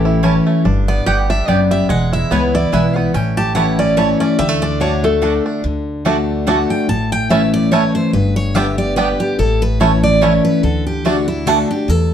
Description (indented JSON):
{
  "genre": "bluegrass",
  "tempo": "144 BPM",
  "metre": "3/4",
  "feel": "swing 56% on 8ths",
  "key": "D major",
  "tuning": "A4 = 440 Hz",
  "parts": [
    { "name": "picked steel-string acoustic guitar", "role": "melody", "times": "0.0-12.1 s", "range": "E4 to A5", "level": "-19 LUFS", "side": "right 1 dB", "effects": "none" },
    { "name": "picked steel-string acoustic guitar", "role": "accompaniment", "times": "0.0-12.1 s", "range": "E2 to G4", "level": "-16 LUFS", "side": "left 2 dB", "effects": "none" },
    { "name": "bluegrass banjo", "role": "arpeggios", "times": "0.0-11.6 s", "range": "E3 to G4", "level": "-22 LUFS", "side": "right 5 dB", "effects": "none" },
    { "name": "upright bass", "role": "bass", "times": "0.0-12.1 s", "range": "E1 to E2", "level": "-20 LUFS", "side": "equal", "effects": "none" },
    { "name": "mandolin", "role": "stabs", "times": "0.2-11.6 s", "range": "A3 to A5", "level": "-22 LUFS", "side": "right 6 dB", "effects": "none" }
  ],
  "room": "moderate studio reverb, RT60 1.0 s",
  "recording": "dark, warm production, faint mains hum",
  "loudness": "-13 LUFS",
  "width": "side -9 dB against mid",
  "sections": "0.0-5.6 A section; 5.6-12.1 B section",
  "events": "none",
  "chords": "0.0 A; 0.7 G; 1.9 E; 3.1 A; 4.4 D; 6.9 A; 8.1 G; 9.4 A; 10.6 D"
}